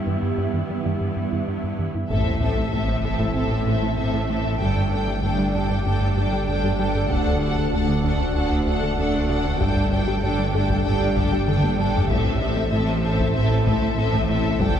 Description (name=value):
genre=cinematic, hybrid orchestral and electronic film score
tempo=96 BPM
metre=4/4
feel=straight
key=unclear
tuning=A4 = 440 Hz
part: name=warm symphonic viola section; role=accompaniment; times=0.0-14.8 s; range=B3 to E4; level=-32 LUFS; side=equal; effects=none
part: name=warbly tape-like pad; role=sustained chords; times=0.0-14.8 s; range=G3 to E5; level=-29 LUFS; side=equal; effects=chorus, built-in reverb
part: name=rich symphonic cello section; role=bass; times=0.0-14.8 s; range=D2 to A2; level=-28 LUFS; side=right 2 dB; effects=none
part: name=resonant blip pluck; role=arpeggios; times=0.1-14.7 s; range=D3 to A4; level=-32 LUFS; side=left 1 dB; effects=none
part: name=rubbery square bass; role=riff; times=0.1-14.8 s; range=D2 to A3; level=-27 LUFS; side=right 1 dB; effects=none
part: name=warm symphonic violin section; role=melody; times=2.1-14.8 s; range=E5 to G5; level=-30 LUFS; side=left 3 dB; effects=none
part: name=warm symphonic violin section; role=second line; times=2.1-14.8 s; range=A4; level=-30 LUFS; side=equal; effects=none
part: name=saturated sub bass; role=bass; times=2.1-14.8 s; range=D1 to A1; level=-29 LUFS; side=left 1 dB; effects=none
part: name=warm symphonic double bass section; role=bass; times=2.1-14.8 s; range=G1 to D2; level=-27 LUFS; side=right 1 dB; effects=none
part: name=taiko ensemble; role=drums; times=2.1-3.3, 7.1-14.8 s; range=none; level=-27 LUFS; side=left 2 dB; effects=none
part: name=sub drop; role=sound effects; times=2.1-4.6 s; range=none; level=-30 LUFS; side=left 1 dB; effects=none
room=wet scoring stage reverb, RT60 1.4 s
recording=heard from further back in the room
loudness=-20 LUFS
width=side -9 dB against mid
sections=0.0-2.1 A section; 2.1-14.8 B section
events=impact 2.1-4.6; drum fill 11.5-12.1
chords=0.0 Em/G; 2.1 Am; 4.6 Gsus2; 7.1 D; 9.6 Gsus2; 12.1 Am